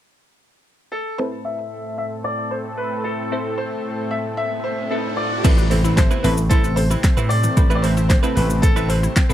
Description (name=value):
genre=dance-pop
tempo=113 BPM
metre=4/4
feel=straight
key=A minor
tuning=A4 = 439 Hz
part: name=bright baby grand piano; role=melody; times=0.9-9.3 s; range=A4 to E5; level=-25 LUFS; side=equal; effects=low-pass filter, analog delay
part: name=wavetable chord stab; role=accompaniment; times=1.2-9.3 s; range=C4 to C5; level=-27 LUFS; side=left 1 dB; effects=sidechain pumping, low-pass filter
part: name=soft supersaw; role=sustained chords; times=1.2-9.3 s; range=A2 to A4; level=-28 LUFS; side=left 1 dB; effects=sidechain pumping, low-pass filter
part: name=riser and impact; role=sound effects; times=4.4-7.6 s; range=none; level=-28 LUFS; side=equal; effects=none
part: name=wide unison pluck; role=arpeggios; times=5.4-9.3 s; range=E3 to C5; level=-30 LUFS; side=left 4 dB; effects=sidechain pumping, analog delay
part: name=direct-recorded clean electric guitar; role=riff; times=5.4-9.3 s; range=A3 to B4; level=-27 LUFS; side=right 8 dB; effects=lush chorus
part: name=vintage slap bass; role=bass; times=5.4-9.3 s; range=A1 to A2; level=-19 LUFS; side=equal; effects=sidechain pumping
part: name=deep house drum kit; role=drums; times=5.4-9.3 s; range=crash cymbal, handclaps, hi-hat, kick drum, shaker, snare drum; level=-17 LUFS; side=equal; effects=none
room=light reverb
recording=none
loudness=-17 LUFS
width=side -12 dB against mid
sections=0.0-1.2 A section; 1.2-5.4 B section; 5.4-9.3 C section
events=filter sweep 1.2-5.4; riser 4.4-5.4; impact 5.4-7.6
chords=0.0 N.C.; 1.2 Amadd9